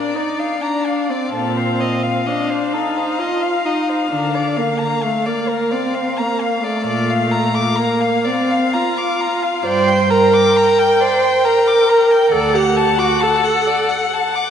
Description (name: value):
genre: classical, slow romantic movement for string quartet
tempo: 66 BPM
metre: 3/4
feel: rubato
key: Bb major, G minor from 9.7 s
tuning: A4 = 439 Hz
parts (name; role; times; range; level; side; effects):
- rich violin; melody; 0.0-14.5 s; D5 to G5; -23 LUFS; left 6 dB; none
- warm violin; second line; 0.0-14.5 s; A4 to D6; -21 LUFS; left 2 dB; none
- dark viola; accompaniment; 0.0-14.1 s; A3 to C5; -17 LUFS; right 1 dB; none
- dark cello; bass; 1.3-13.1 s; D2 to D3; -24 LUFS; right 2 dB; none
room: wet church reverb, RT60 2.6 s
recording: recorded in a church or concert hall, nothing above 10.6 kHz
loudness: -14 LUFS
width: side -8 dB against mid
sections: 0.0-14.5 A section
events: none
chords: 0.0 Bb; 1.3 F7(no3)/Bb; 4.1 Bb/D; 6.9 Bb; 9.7 Gm; 12.3 D